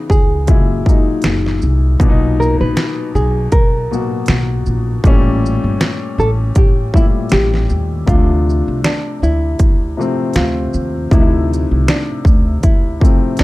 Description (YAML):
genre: lo-fi hip hop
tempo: 79 BPM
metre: 4/4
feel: swing 57% on 16ths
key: unclear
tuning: A4 = 441 Hz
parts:
  - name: nylon-string guitar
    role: melody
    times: 0.0-13.4 s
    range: D4 to B4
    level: -21 LUFS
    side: right 1 dB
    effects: low-pass filter, tape echo, plate reverb
  - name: dark upright piano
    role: accompaniment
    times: 0.0-13.4 s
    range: A#2 to F#4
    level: -20 LUFS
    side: left 3 dB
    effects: low-pass filter, plate reverb
  - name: upright bass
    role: bass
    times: 0.1-13.4 s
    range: F#1 to Eb2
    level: -16 LUFS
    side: equal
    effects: none
  - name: dubstep drum kit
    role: drums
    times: 0.1-13.4 s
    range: hi-hat, kick drum, shaker, snare drum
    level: -13 LUFS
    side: equal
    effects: none
room: light reverb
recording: dark, warm production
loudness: -12 LUFS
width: side -18 dB against mid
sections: 0.0-13.4 A section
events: none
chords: 0.5 F#9; 2.0 Bmaj7; 5.0 A7b9; 8.1 Dm7